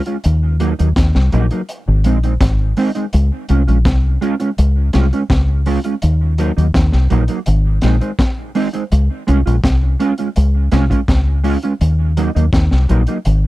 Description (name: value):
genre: roots reggae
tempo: 83 BPM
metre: 4/4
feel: straight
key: Db major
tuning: A4 = 440 Hz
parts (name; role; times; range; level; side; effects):
- mellow electric guitar; accompaniment; 0.1-13.2 s; Gb3 to F4; -19 LUFS; right 3 dB; analog chorus, tape echo
- crunchy breakbeat drum kit; drums; 0.1-13.4 s; hi-hat, kick drum, snare drum; -19 LUFS; equal; none
- deep dub fingered electric bass; bass; 0.3-13.5 s; Ab1 to Eb2; -13 LUFS; equal; none
room: little or no reverb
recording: dry, close 1970s-style studio recording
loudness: -13 LUFS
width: side -17 dB against mid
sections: 0.0-13.5 A section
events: none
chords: 0.2 Ebm; 1.7 Ab; 3.1 Db; 6.0 Ebm; 7.5 Ab; 8.9 Db; 11.8 Ebm